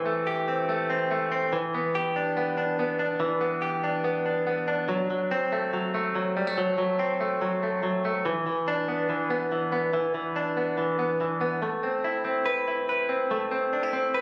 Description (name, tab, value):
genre	indie pop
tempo	143 BPM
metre	4/4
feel	straight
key	A dorian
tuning	A4 = 440 Hz
part	direct-recorded clean electric guitar	solo	0.0-14.2 s	E3 to B4	-27 LUFS	equal	none
room	moderate studio reverb, RT60 0.6 s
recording	recorded on a phone in the room, club reverb, compression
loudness	-27 LUFS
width	mono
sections	0.0-11.6 A section; 11.6-14.2 B section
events	none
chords	0.0 Am7; 1.5 Em7; 4.9 F#dim; 8.3 Bmadd11/E; 11.6 Amadd9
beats	0.26 0.68 1.10 | 1.52 1.94 2.36 2.78 | 3.20 3.62 4.04 4.46 | 4.88 5.31 5.73 6.15 | 6.57 6.99 7.41 7.83 | 8.25 8.67 9.09 9.51 | 9.93 10.35 10.77 11.20 | 11.62 12.04 12.46 12.88 | 13.30 13.72 14.14